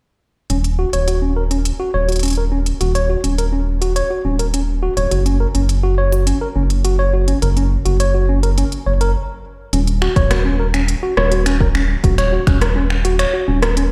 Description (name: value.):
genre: IDM.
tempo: 104 BPM.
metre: 4/4.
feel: straight.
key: Eb minor.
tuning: A4 = 439 Hz.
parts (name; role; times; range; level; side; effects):
tine electric piano; arpeggios; 0.5-13.8 s; Db4 to Db5; -22 LUFS; equal; low-pass filter, tape echo.
round analog bass; bass; 0.5-13.9 s; Eb1 to Gb1; -19 LUFS; equal; none.
organic electronic drum kit; drums; 0.5-13.9 s; finger snaps, hi-hat, rim click; -26 LUFS; equal; overdrive.
electronic kick drum; drums; 10.2-12.6 s; none; -19 LUFS; equal; overdrive.
room: light reverb.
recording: played on a big sound system in a bare room, large studio reverb.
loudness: -17 LUFS.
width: mono.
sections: 0.5-9.7 A section; 9.7-13.9 B section.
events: stop 9.2-9.7.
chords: 0.5 Ebm7; 5.1 Gb5; 9.7 Ebm7.